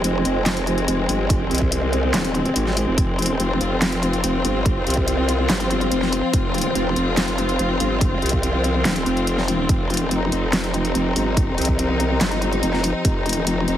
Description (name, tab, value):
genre	heavy wobble dubstep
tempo	143 BPM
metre	4/4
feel	half-time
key	F minor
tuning	A4 = 440 Hz
part	evolving wavetable pad	sustained chords	0.0-13.8 s	F3 to C5	-27 LUFS	left 1 dB	phaser, built-in reverb, sidechain pumping
part	growl bass	bass	0.0-13.8 s	Eb1 to C2	-22 LUFS	equal	chorus, overdrive
part	dubstep drum kit	drums	0.0-13.8 s	handclaps, hi-hat, snare drum	-24 LUFS	equal	overdrive, small room ambience
part	rich studio string section	texture	0.0-13.8 s	Ab3 to F4	-25 LUFS	left 2 dB	sidechain pumping
part	electronic kick drum	drums	1.3-13.1 s	none	-21 LUFS	equal	small room ambience
room	light reverb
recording	heavily compressed radio sound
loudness	-18 LUFS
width	side -11 dB against mid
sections	0.0-13.8 A section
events	none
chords	0.0 F5